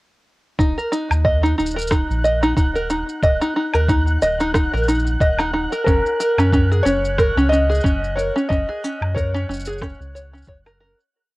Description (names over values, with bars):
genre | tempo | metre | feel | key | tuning
folktronica | 91 BPM | 4/4 | swing 56% on 16ths | Eb minor | A4 = 440 Hz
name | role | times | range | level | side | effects
open-back banjo | arpeggios | 0.6-11.0 s | Db4 to Eb5 | -20 LUFS | right 1 dB | cassette tape, tape echo
round analog bass | bass | 0.6-10.9 s | Eb1 to Gb2 | -21 LUFS | equal | none
electronic kick drum | drums | 0.6-10.6 s | none | -20 LUFS | equal | cassette tape
electronic shaker, woodblock and rim click | drums | 0.6-11.1 s | none | -26 LUFS | equal | overdrive, cassette tape
flickering grainy texture | texture | 1.1-11.2 s | Gb6 | -30 LUFS | right 1 dB | built-in reverb, cassette tape
felt-muted upright piano | melody | 5.8-10.4 s | Bb4 to Eb5 | -22 LUFS | left 1 dB | tape echo
room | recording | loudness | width
moderate booth ambience, RT60 0.2 s | home recording on cassette | -16 LUFS | side -20 dB against mid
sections
0.6-11.1 groove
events
fade-out 7.6-11.1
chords
0.6 Ebm; 5.9 Gb